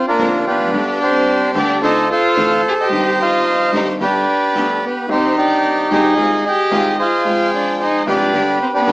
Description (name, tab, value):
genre	tango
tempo	111 BPM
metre	4/4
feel	rubato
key	C minor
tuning	A4 = 435 Hz
part	bandoneon	melody	0.0-8.9 s	D4 to Ab5	-15 LUFS	right 1 dB	none
part	dark violin	second line	0.0-8.9 s	Bb3 to Ab4	-21 LUFS	equal	none
part	clear grand piano	accompaniment	0.2-8.9 s	F1 to G5	-22 LUFS	left 1 dB	none
part	bright studio string section	stabs	0.2-8.9 s	Eb3 to G5	-26 LUFS	equal	none
room	wet studio reverb, RT60 0.6 s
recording	small speaker sound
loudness	-13 LUFS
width	side -22 dB against mid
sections	0.0-8.9 A section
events	none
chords	0.0 Bbadd9; 0.7 G; 1.8 Dm7; 2.9 Cm/G; 4.0 G; 5.1 Cm; 6.2 Ab6/C; 7.3 Fmadd9; 8.3 G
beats	0.20 | 0.74 1.28 1.82 2.36 | 2.91 3.45 3.99 4.54 | 5.09 5.63 6.17 6.72 | 7.26 7.80 8.34 8.88